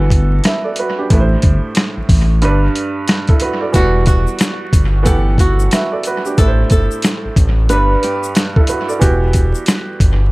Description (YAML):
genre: hip hop, boom-bap hip-hop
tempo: 91 BPM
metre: 4/4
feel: swing 62% on 16ths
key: E minor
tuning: A4 = 440 Hz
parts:
  - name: warm upright piano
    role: accompaniment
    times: 0.0-10.3 s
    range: G2 to F#5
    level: -19 LUFS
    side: right 2 dB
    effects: cassette tape, high-pass filter, low-pass filter
  - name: smooth synth bass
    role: bass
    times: 0.0-10.3 s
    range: E1 to A1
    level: -14 LUFS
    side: equal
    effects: none
  - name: boom bap sampler-style drum kit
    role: drums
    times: 0.1-10.2 s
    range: hi-hat, kick drum, rim click, snare drum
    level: -14 LUFS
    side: equal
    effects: none
  - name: tube shaker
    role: percussion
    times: 3.7-10.2 s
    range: none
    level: -31 LUFS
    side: left 7 dB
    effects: none
  - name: flamenco guitar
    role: melody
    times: 3.8-8.3 s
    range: F#4 to B4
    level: -21 LUFS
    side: right 1 dB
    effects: high-pass filter, low-pass filter, dub echo
room: studio ambience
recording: echo-heavy mix, vinyl crackle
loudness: -12 LUFS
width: side -22 dB against mid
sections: 0.0-10.3 A section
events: none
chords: 0.0 Emadd9; 1.1 Am; 2.4 G; 3.7 Emadd9; 6.4 Am; 7.7 G; 9.0 Emadd9